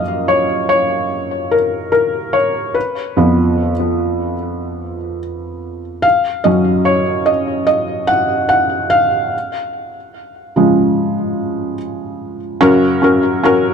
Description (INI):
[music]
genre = pop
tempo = 73 BPM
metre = 4/4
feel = straight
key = F# major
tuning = A4 = 439 Hz
[part]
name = felt-muted upright piano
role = solo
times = 0.0-13.7 s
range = E#2 to F#5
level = -14 LUFS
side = equal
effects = ping-pong delay
[sound]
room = light reverb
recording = dark, warm production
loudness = -13 LUFS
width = side -6 dB against mid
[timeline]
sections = 0.0-12.6 A section; 12.6-13.7 B section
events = felt piano solo 0.0-12.6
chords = 0.0 F#maj7; 2.8 N.C.; 6.0 D#m9/F#; 9.3 C#; 12.6 F#